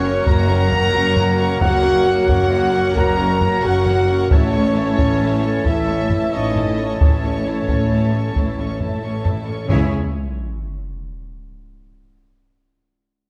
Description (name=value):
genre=cinematic, epic orchestral film score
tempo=89 BPM (dotted quarters)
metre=12/8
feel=straight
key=C# minor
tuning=A4 = 441 Hz
part: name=warm symphonic violin section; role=melody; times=0.0-9.9 s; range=C#5 to A#5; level=-32 LUFS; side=equal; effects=none
part: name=dark studio violin section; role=second line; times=0.0-9.9 s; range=A#4 to C#6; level=-34 LUFS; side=equal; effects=none
part: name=rich symphonic viola section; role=accompaniment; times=0.0-9.9 s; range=A3 to A#4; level=-30 LUFS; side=equal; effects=none
part: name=bright trombone section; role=sustained chords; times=0.0-9.9 s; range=E3 to A#3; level=-31 LUFS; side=equal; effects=none
part: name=clear woodwind section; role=sustained chords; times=0.0-9.9 s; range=A#3 to A5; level=-31 LUFS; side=equal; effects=none
part: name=dark French horn section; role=sustained chords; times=0.0-9.9 s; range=C#4 to A#4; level=-24 LUFS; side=equal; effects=none
part: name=dark trumpet section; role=stabs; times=0.0-9.9 s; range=C#5 to A#5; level=-27 LUFS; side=equal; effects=none
part: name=dark symphonic cello section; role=bass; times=0.0-9.9 s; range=F#2 to C#3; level=-26 LUFS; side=equal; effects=none
part: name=warm symphonic double bass section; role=bass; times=0.0-9.9 s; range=F#1 to C#2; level=-27 LUFS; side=equal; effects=none
part: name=taiko ensemble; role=drums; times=0.3-9.8 s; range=none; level=-22 LUFS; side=equal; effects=none
part: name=timpani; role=percussion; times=9.7-9.9 s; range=C#3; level=-29 LUFS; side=equal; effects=none
part: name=sub drop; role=sound effects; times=9.9-12.4 s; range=none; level=-30 LUFS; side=equal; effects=none
room=moderate scoring stage reverb, RT60 1.8 s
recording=none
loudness=-18 LUFS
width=mono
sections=0.0-9.7 A section; 9.7-12.4 B section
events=impact 9.7-12.4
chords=0.0 F#; 4.3 A; 9.7 C#m